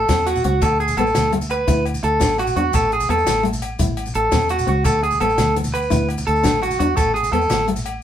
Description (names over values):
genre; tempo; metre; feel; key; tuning
highlife guitar band; 113 BPM (dotted quarters); 12/8; straight; A major; A4 = 440 Hz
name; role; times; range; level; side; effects
electric guitar at the edge of break-up; arpeggios; 0.0-7.7 s; F#4 to B4; -19 LUFS; right 1 dB; none
fingered electric bass; bass; 0.0-8.0 s; A1 to E2; -23 LUFS; equal; none
nylon-string guitar; accompaniment; 0.1-7.9 s; E3 to E4; -25 LUFS; left 4 dB; none
compact cocktail drum kit; drums; 0.1-7.9 s; hi-hat, kick drum, snare drum; -24 LUFS; equal; none
agogo bells; percussion; 0.1-8.0 s; none; -33 LUFS; left 4 dB; none
congas; percussion; 0.1-7.8 s; none; -28 LUFS; left 1 dB; none
maracas; percussion; 0.1-7.9 s; none; -34 LUFS; left 3 dB; none
room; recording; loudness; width
light reverb; band playing live in one room; -16 LUFS; side -10 dB against mid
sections
0.0-8.0 A section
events
none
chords
0.0 A6; 0.6 Dsus2; 2.7 A6; 4.9 Dsus2; 7.0 A5